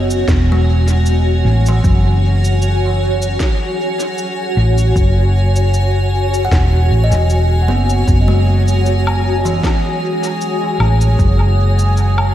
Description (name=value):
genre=ambient dub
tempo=77 BPM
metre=4/4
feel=swing 54% on 16ths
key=unclear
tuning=A4 = 441 Hz
part: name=granular cloud pad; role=sustained chords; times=0.0-12.3 s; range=F#4 to G#5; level=-19 LUFS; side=equal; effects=built-in reverb, lush chorus
part: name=buzzing kalimba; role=arpeggios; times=0.0-12.1 s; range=E3 to F#5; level=-23 LUFS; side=right 4 dB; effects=tape echo
part: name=hollow-body short-scale fingered electric bass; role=bass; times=0.0-12.3 s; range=E1 to A1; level=-13 LUFS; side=equal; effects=tube saturation
part: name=electronic cabasa, snare drum and woodblock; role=drums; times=0.1-12.3 s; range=none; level=-26 LUFS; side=left 1 dB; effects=studio reverb, dub echo
part: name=electronic kick drum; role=drums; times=0.3-11.4 s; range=none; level=-16 LUFS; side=equal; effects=studio reverb
part: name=drifting glass-harmonics texture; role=texture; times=8.4-12.3 s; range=G#3 to G#4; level=-25 LUFS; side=right 3 dB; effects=chorus, built-in reverb
room=light reverb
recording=none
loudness=-12 LUFS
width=side -12 dB against mid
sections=0.0-12.3 A section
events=none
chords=0.0 F#7sus2